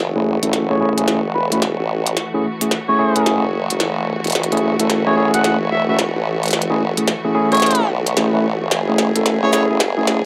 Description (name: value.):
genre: glitch hop.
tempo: 110 BPM.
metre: 4/4.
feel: swing 63% on 16ths.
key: F# minor.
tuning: A4 = 440 Hz.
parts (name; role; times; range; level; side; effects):
rich studio string section; sustained chords; 0.0-10.3 s; E3 to G#4; -28 LUFS; equal; vintage 12-bit sampler grit, low-pass filter.
formant-sweep wobble bass; bass; 0.0-10.3 s; E1 to B1; -23 LUFS; equal; chorus, tube saturation, high-pass filter.
tine electric piano; stabs; 0.2-10.2 s; A3 to B4; -21 LUFS; equal; low-pass filter, tape echo.
glitchy drum kit; drums; 0.4-10.2 s; hi-hat, shaker, snare drum; -22 LUFS; equal; high-pass filter on hats, high-pass filter on snare, high-pass filter on perc, high-pass filter on room.
clear harmonica; melody; 0.7-9.6 s; B4 to F#5; -24 LUFS; equal; vintage 12-bit sampler grit, low-pass filter, tape echo.
riser; sound effects; 10.0-10.3 s; none; barely audible; none; none.
room: little or no reverb.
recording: dry, gritty hardware recording, high-pass filter.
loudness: -18 LUFS.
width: mono.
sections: 0.0-10.3 A section.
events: build-up 0.0-10.3; drum fill 0.0-10.3; filter sweep on tine electric piano 0.0-10.3; filter sweep on harmonica 0.0-10.3.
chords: 0.0 F#m7.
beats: 0.54 1.08 1.63 | 2.17 2.72 3.26 3.81 | 4.35 4.90 5.44 5.99 | 6.54 7.08 7.63 8.17 | 8.72 9.26 9.81.